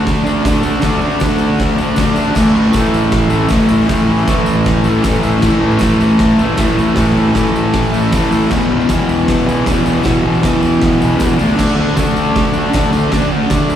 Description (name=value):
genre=garage rock duo or trio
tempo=156 BPM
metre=4/4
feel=straight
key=unclear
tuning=A4 = 440 Hz
part: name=thick fuzz guitar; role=riff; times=0.0-13.8 s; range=E2 to D4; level=-12 LUFS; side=equal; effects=distortion, slapback echo
part: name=oversized low-tuned drum kit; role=drums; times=0.1-13.6 s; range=crash cymbal, hi-hat, kick drum, snare drum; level=-18 LUFS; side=equal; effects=none
part: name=tambourine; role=percussion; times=0.1-13.8 s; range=none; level=-35 LUFS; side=right 2 dB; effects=none
room=moderate club reverb, RT60 0.7 s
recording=live gig heard through the venue's PA, recital hall reverb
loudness=-11 LUFS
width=side -10 dB against mid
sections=0.0-2.4 A section; 2.4-13.8 A section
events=none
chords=0.0 D5; 2.4 A5; 8.5 E5; 11.4 D5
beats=0.06 0.44 | 0.82 1.21 1.59 1.98 | 2.36 2.74 3.13 3.51 | 3.90 4.28 4.67 5.05 | 5.43 5.82 6.20 6.59 | 6.97 7.36 7.74 8.12 | 8.51 8.89 9.28 9.66 | 10.05 10.43 10.82 11.20 | 11.59 11.97 12.35 12.74 | 13.12 13.51